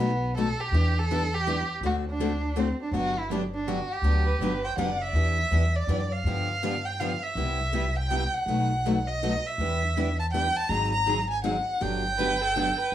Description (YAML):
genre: acoustic string swing (jazz manouche)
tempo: 162 BPM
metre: 3/4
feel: swing 62% on 8ths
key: G major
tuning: A4 = 440 Hz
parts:
  - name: warm violin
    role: melody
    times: 0.0-12.9 s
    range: B3 to Bb5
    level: -28 LUFS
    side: right 1 dB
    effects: none
  - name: picked steel-string acoustic guitar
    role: accompaniment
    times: 0.0-12.7 s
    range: B2 to A4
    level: -32 LUFS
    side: left 5 dB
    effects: none
  - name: upright bass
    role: bass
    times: 0.0-12.9 s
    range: F#1 to G2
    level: -28 LUFS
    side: equal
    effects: none
  - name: picked plugged-in acoustic archtop guitar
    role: accompaniment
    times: 0.7-12.7 s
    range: B2 to B4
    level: -34 LUFS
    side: right 5 dB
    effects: none
  - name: warm violin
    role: second line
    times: 4.3-5.1, 12.2-12.9 s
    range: A4 to D5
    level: -33 LUFS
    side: right 4 dB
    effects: none
room: moderate studio reverb, RT60 0.6 s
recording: small room ambience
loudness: -24 LUFS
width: side -11 dB against mid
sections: 0.0-5.1 A section; 5.1-12.9 B section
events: none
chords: 0.0 B7; 0.7 Em7; 1.8 D7; 2.9 Gmaj7; 5.1 Em7; 6.3 G7; 7.4 Cmaj7; 8.5 B7; 9.6 Em7; 10.7 Ab9; 11.8 Gmaj7